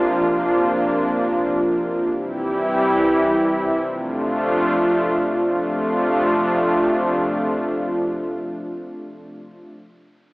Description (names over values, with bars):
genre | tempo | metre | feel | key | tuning
dream pop | free time | none | none | D minor | A4 = 438 Hz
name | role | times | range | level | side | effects
warm analog pad | sustained chords | 0.0-9.7 s | C3 to G4 | -18 LUFS | equal | chorus
room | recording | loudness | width
wet echo chamber reverb, RT60 2.6 s | echo-heavy mix, AM radio sound | -18 LUFS | side -23 dB against mid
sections
0.0-5.6 A section; 5.6-9.0 B section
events
none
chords
0.0 Bbadd9; 2.1 C; 3.8 Dm7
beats
free time